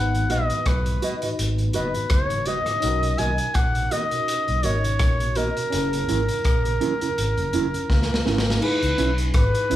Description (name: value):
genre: lovers rock reggae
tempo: 83 BPM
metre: 4/4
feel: swing 56% on 16ths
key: B major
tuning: A4 = 443 Hz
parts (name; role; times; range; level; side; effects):
- clear flugelhorn; melody; 0.0-9.8 s; A#4 to G#5; -25 LUFS; equal; none
- FM electric piano; accompaniment; 0.0-9.8 s; B3 to B4; -31 LUFS; left 2 dB; chorus, phaser, tape echo
- vintage muted fingered electric bass; bass; 0.0-9.8 s; F#1 to C#2; -25 LUFS; equal; none
- mellow tonewheel organ; accompaniment; 0.1-8.6 s; F#2 to B3; -34 LUFS; right 2 dB; chorus vibrato, slow rotary speaker, tape echo
- crunchy breakbeat drum kit; drums; 0.1-9.8 s; crash cymbal, hi-hat, kick drum, rim click, snare drum; -25 LUFS; equal; none
- mellow electric guitar; stabs; 0.3-9.8 s; C#4 to D#5; -28 LUFS; right 5 dB; none
room: moderate large studio reverb, RT60 0.9 s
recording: band playing live in one room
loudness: -20 LUFS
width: side -13 dB against mid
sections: 0.0-8.6 A section; 8.6-9.8 B section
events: drum fill 7.9-8.6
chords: 0.0 G#m7; 2.8 Bmaj7; 5.7 F#7; 8.6 C#m7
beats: 0.66 1.39 2.11 | 2.83 3.56 4.28 5.00 | 5.73 6.45 7.17 7.90 | 8.62 9.34